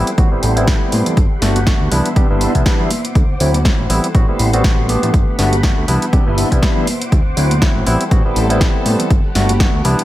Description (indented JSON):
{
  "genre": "filtered disco house",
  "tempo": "121 BPM",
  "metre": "4/4",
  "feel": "swing 57% on 16ths",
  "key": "G major",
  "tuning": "A4 = 440 Hz",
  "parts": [
    { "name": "barky tine electric piano", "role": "accompaniment", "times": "0.0-10.0 s", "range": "F#3 to G4", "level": "-19 LUFS", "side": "equal", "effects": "phaser, sidechain pumping, low-pass filter" },
    { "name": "string machine, full ensemble", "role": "sustained chords", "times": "0.0-10.0 s", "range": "B3 to D6", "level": "-24 LUFS", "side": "equal", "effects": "ensemble chorus, sidechain pumping, low-pass filter" },
    { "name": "fat analog bass", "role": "bass", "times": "0.0-10.0 s", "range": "G1 to C3", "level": "-18 LUFS", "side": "equal", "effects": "sidechain pumping, low-pass filter" },
    { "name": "punchy analog drum machine", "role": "drums", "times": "0.1-10.0 s", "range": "hi-hat, snare drum", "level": "-22 LUFS", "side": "equal", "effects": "overdrive, sidechain pumping on hats" },
    { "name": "tambourine and congas", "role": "percussion", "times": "0.1-10.0 s", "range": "none", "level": "-26 LUFS", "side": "right 2 dB", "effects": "sidechain pumping on perc, low-pass filter on perc" },
    { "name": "electronic kick drum", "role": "drums", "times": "0.2-9.7 s", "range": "none", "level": "-14 LUFS", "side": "equal", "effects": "overdrive" }
  ],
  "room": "light reverb, digital ambience",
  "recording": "none",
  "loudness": "-12 LUFS",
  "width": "side -15 dB against mid",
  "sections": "0.0-10.0 A section",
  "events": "none",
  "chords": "0.0 Am7; 1.2 Gmaj7; 1.9 Cmaj7; 2.9 D7; 3.9 Am7; 5.1 Gmaj7; 5.9 Cmaj7; 6.9 D7; 7.9 Am7; 9.1 Gmaj7",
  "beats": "0.18 0.68 | 1.17 1.67 2.16 2.66 | 3.15 3.65 4.15 4.64 | 5.14 5.63 6.13 6.62 | 7.12 7.62 8.11 8.61 | 9.11 9.60"
}